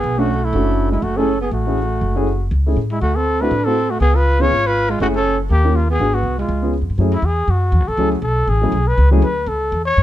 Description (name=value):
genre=jazz, small-group swing and bop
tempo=242 BPM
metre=4/4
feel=swing 57% on 8ths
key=F# minor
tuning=A4 = 437 Hz
part: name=breathy trumpet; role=melody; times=0.0-10.0 s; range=E4 to C#5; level=-20 LUFS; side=left 1 dB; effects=plate reverb
part: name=breathy alto saxophone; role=second line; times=0.0-6.7 s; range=G#3 to E#4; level=-23 LUFS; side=right 5 dB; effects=none
part: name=upright bass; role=bass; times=0.0-10.0 s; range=F#1 to A2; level=-18 LUFS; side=equal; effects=none
part: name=warm grand piano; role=accompaniment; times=0.2-9.2 s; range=F#3 to G#4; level=-20 LUFS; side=left 1 dB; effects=none
room=light reverb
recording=close, detailed microphones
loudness=-15 LUFS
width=side -13 dB against mid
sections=0.0-7.0 A section; 7.0-10.0 B section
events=trumpet solo 7.0-10.0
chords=0.0 Bm7; 1.0 F#m7; 3.0 D7; 4.0 C#7; 5.0 F#m7; 5.5 D#7; 6.0 G#m7b5; 6.5 C#7; 7.0 F#m7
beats=| 0.04 0.29 0.53 0.78 | 1.03 1.28 1.52 1.77 | 2.02 2.27 2.52 2.76 | 3.01 3.26 3.51 3.76 | 4.00 4.25 4.50 4.75 | 5.00 5.24 5.49 5.74 | 5.99 6.24 6.49 6.73 | 6.98 7.23 7.48 7.72 | 7.97 8.22 8.47 8.72 | 8.96 9.21 9.46 9.71 | 9.96